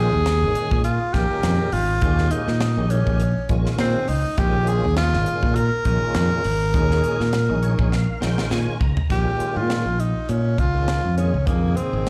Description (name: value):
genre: electric jazz fusion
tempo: 102 BPM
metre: 4/4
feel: swing 55% on 16ths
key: Bb dorian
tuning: A4 = 441 Hz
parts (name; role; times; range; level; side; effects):
- clear tenor saxophone; melody; 0.0-12.1 s; Bb3 to Bb4; -26 LUFS; equal; slapback echo
- tonewheel organ; accompaniment; 0.0-12.1 s; Bb2 to Bb5; -30 LUFS; equal; slow rotary speaker, chorus vibrato
- modern bright fingered electric bass; bass; 0.0-12.1 s; Ab1 to Bb2; -23 LUFS; equal; none
- tight funk drum kit; drums; 0.3-12.1 s; hi-hat, kick drum, snare drum, toms; -28 LUFS; equal; none
room: little or no reverb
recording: live gig heard through the venue's PA, club reverb, vinyl crackle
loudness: -21 LUFS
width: mono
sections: 0.0-9.1 A section; 9.1-12.1 B section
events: tonewheel organ fill 7.3-9.1; drum fill 7.9-9.1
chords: 0.0 Bbm7